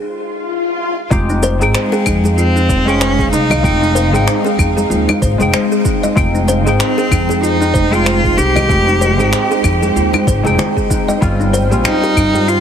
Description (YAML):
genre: organic downtempo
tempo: 95 BPM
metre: 4/4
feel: swing 57% on 16ths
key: F minor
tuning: A4 = 437 Hz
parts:
  - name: semi-hollow electric guitar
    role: accompaniment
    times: 0.0-12.6 s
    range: G3 to G5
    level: -20 LUFS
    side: left 3 dB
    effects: analog chorus, sidechain pumping, ping-pong delay
  - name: swell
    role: sound effects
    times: 0.1-1.1 s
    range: none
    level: -22 LUFS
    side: left 4 dB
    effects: none
  - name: ethereal airy pad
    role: sustained chords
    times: 2.0-12.6 s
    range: Ab3 to G5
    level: -20 LUFS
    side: right 1 dB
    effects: ensemble chorus, built-in reverb, sidechain pumping
  - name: kalimba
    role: arpeggios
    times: 1.1-12.6 s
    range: Eb4 to Eb5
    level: -20 LUFS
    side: right 1 dB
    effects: ping-pong delay
  - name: upright bass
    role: bass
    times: 1.1-12.6 s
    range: F1 to G2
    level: -16 LUFS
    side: equal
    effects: sidechain pumping
  - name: electronic kick drum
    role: drums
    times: 1.1-12.3 s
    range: none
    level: -18 LUFS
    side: equal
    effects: overdrive
  - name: electronic shaker, finger snaps and claves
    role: drums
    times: 1.1-12.6 s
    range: none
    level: -22 LUFS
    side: left 1 dB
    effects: overdrive
  - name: bongos and congas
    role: percussion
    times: 1.4-12.5 s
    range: none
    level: -24 LUFS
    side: left 4 dB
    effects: none
  - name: clear cello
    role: melody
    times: 1.8-12.6 s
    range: Ab3 to G4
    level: -17 LUFS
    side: equal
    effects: digital delay
room: light reverb, studio reverb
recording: heavily compressed radio sound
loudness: -11 LUFS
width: side -8 dB against mid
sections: 0.0-1.1 A section; 1.1-12.6 B section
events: break 0.0-1.1; filter sweep on kalimba 0.0-1.1; swell 0.1-1.1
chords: 0.0 Fm7 (rootless); 1.1 Fm7; 11.2 Eb13/G